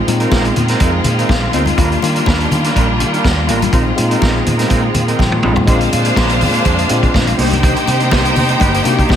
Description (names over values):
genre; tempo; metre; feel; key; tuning
disco; 123 BPM; 4/4; straight; unclear; A4 = 436 Hz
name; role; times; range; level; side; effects
clear symphonic string section; sustained chords; 0.0-9.2 s; D3 to G4; -20 LUFS; equal; none
mellow electric guitar; accompaniment; 0.1-9.1 s; G3 to C5; -21 LUFS; right 4 dB; none
mellow tine electric piano; accompaniment; 0.1-9.2 s; G3 to G5; -20 LUFS; left 4 dB; medium stereo tremolo
fingered electric bass; bass; 0.1-9.2 s; G1 to Eb3; -18 LUFS; equal; none
vintage drum kit; drums; 0.1-9.2 s; hi-hat, kick drum, snare drum, toms; -17 LUFS; equal; none
congas; percussion; 0.1-9.2 s; none; -24 LUFS; left 4 dB; none
clear studio string section; second line; 5.7-9.2 s; D4 to G5; -18 LUFS; right 1 dB; none
room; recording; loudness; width
light reverb; none; -11 LUFS; side -9 dB against mid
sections
0.0-5.7 A section; 5.7-9.2 B section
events
tine electric piano fill 1.1-1.8, 5.0-5.7, 8.9-9.2; drum fill 5.2-5.7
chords
0.0 Bb9sus4; 1.8 Ebmaj9; 3.7 Bb9sus4; 5.7 Bb9; 7.4 Cm7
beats
0.32 0.81 1.30 | 1.78 2.27 2.76 3.25 | 3.73 4.22 4.71 5.20 | 5.68 6.17 6.66 7.15 | 7.64 8.13 8.61 9.10